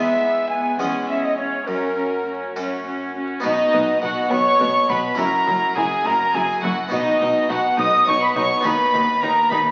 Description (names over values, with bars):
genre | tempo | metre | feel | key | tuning
classical, baroque-style concerto movement with solo episodes | 69 BPM (dotted quarters) | 6/8 | straight | B major | A4 = 439 Hz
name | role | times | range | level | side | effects
silver concert flute | melody | 0.0-9.7 s | A#4 to D#6 | -22 LUFS | equal | none
warm chamber violin section | melody | 0.0-9.6 s | F#4 to D#6 | -28 LUFS | equal | none
rich chamber violin section | second line | 0.0-9.7 s | D#4 to G#5 | -29 LUFS | equal | none
harpsichord | accompaniment | 0.0-9.7 s | D#2 to G#4 | -29 LUFS | equal | none
warm chamber viola section | accompaniment | 0.0-9.6 s | B3 to E4 | -30 LUFS | equal | none
dark chamber cello section | bass | 0.0-9.6 s | D#2 to B2 | -36 LUFS | equal | none
rich chamber double bass section | bass | 3.4-9.6 s | F#1 to D#2 | -36 LUFS | equal | none
room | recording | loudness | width
wet recital hall reverb, RT60 1.7 s | very old 78 rpm record, vinyl crackle, nothing above 7.5 kHz | -20 LUFS | mono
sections
0.0-3.4 A section; 3.4-9.7 B section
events
none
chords
0.0 E; 0.8 C#m/E; 1.7 F#; 3.4 B; 5.2 F#7; 6.9 B; 8.6 B/D#